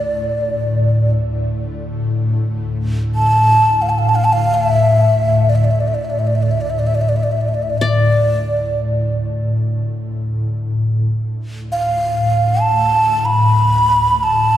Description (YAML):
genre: world meditative, free-time meditation music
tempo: free time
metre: none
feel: none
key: D kumoi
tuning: A4 = 439 Hz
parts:
  - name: breathy low xiao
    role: melody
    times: 0.0-14.6 s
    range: D5 to B5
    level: -16 LUFS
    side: right 1 dB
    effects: dub echo
  - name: ethereal airy pad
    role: drone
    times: 0.0-14.6 s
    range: D2 to A2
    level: -17 LUFS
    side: left 1 dB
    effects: ensemble chorus, built-in reverb, tremolo
  - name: qanun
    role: texture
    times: 7.8-11.1 s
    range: D5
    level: -23 LUFS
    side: left 3 dB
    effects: none
room: wet plate reverb, RT60 2.9 s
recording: echo-heavy mix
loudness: -14 LUFS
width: side -12 dB against mid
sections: 0.0-10.6 A section; 10.6-14.6 A section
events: none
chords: none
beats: free time